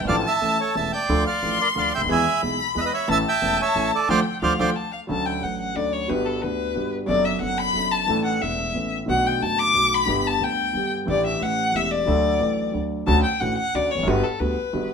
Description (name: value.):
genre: tango.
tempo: 180 BPM.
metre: 3/4.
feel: rubato.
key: D minor, D major from 5.1 s.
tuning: A4 = 441 Hz.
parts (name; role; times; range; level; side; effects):
rich violin; second line; 0.0-14.9 s; A4 to D6; -23 LUFS; left 4 dB; none.
warm concert grand piano; accompaniment; 0.0-14.9 s; E1 to A4; -25 LUFS; right 1 dB; none.
upright bass; bass; 0.0-14.9 s; E1 to E2; -30 LUFS; right 1 dB; none.
bandoneon; melody; 0.1-4.7 s; A4 to A5; -22 LUFS; right 5 dB; none.
room: moderate studio reverb, RT60 1.0 s.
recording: minimal, uncompressed stereo recording.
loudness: -20 LUFS.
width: side -6 dB against mid.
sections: 0.0-5.1 A section; 5.1-13.1 B section; 13.1-14.9 B section.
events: band accent 4.1-5.1; violin solo 5.1-13.1, 13.1-14.9.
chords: 0.1 Dm/A; 0.4 A; 1.1 Dm; 2.1 E; 3.1 A; 4.1 Dm7; 5.1 Dmaj7; 6.1 Gmaj7; 7.1 D6/F#; 8.1 Asus4; 8.8 Aadd9; 9.1 Bm7; 10.1 G; 11.1 A7sus4; 11.4 A7; 12.1 D; 13.1 Dmaj7; 14.1 Gmaj7.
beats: | 0.09 0.42 0.76 | 1.09 1.43 1.76 | 2.09 2.43 2.76 | 3.09 3.42 3.76 | 4.09 4.42 4.76 | 5.09 5.43 5.76 | 6.09 6.42 6.76 | 7.09 7.42 7.75 | 8.09 8.42 8.75 | 9.09 9.42 9.75 | 10.09 10.42 10.75 | 11.08 11.41 11.74 | 12.08 12.41 12.74 | 13.08 13.41 13.74 | 14.07 14.40 14.74.